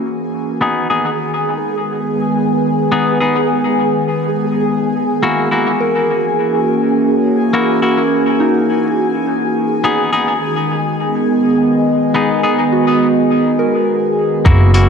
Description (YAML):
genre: ambient dub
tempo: 104 BPM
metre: 4/4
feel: swing 54% on 16ths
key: G# minor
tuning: A4 = 439 Hz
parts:
  - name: warbly tape-like pad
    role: sustained chords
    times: 0.0-14.9 s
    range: D#3 to D#5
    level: -15 LUFS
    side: equal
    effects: chorus, built-in reverb
  - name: bubbling stepped-filter texture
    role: texture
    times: 0.0-14.9 s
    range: F#4 to G#5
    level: -21 LUFS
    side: right 2 dB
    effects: chorus, built-in reverb
  - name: semi-hollow electric guitar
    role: stabs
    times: 0.6-14.9 s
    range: A#3 to G#4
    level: -19 LUFS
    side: left 2 dB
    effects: vintage 12-bit sampler grit, low-pass filter, dub echo
  - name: soft synth bell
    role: arpeggios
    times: 5.8-14.9 s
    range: D#4 to A#4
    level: -21 LUFS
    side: right 1 dB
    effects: chorus, dub echo
  - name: upright bass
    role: bass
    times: 14.5-14.9 s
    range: F#1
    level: -8 LUFS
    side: equal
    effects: none
  - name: electronic kick drum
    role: drums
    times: 14.5-14.6 s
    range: none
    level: -10 LUFS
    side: equal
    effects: small room ambience
  - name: electronic hi-hat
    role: drums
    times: 14.7-14.9 s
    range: none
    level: -25 LUFS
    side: left 4 dB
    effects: small room ambience
room: wet concert hall reverb, RT60 1.9 s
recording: none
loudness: -12 LUFS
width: side -6 dB against mid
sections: 0.0-14.5 A section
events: filter sweep on ambient pad 0.0-14.5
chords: 0.0 F#7; 0.6 G#m; 5.2 F#7; 9.8 G#m